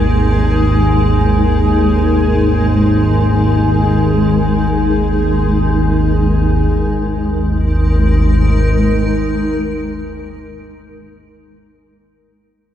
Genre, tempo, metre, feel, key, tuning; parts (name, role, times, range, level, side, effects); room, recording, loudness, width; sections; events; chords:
dark ambient drone; free time; A4 = 441 Hz
granular cloud pad; sustained chords; 0.0-10.4 s; G#3 to A#4; -17 LUFS; left 1 dB; built-in reverb
analog drone; drone; 0.0-10.0 s; G#1 to D#2; -14 LUFS; equal; chorus
bubbling stepped-filter texture; texture; 0.0-6.7 s; G#4 to G#5; -21 LUFS; right 1 dB; chorus, built-in reverb
wet plate reverb, RT60 2.9 s; -11 LUFS; side -10 dB against mid
0.0-6.7 A section; 6.7-11.1 B section
0.0 G#sus2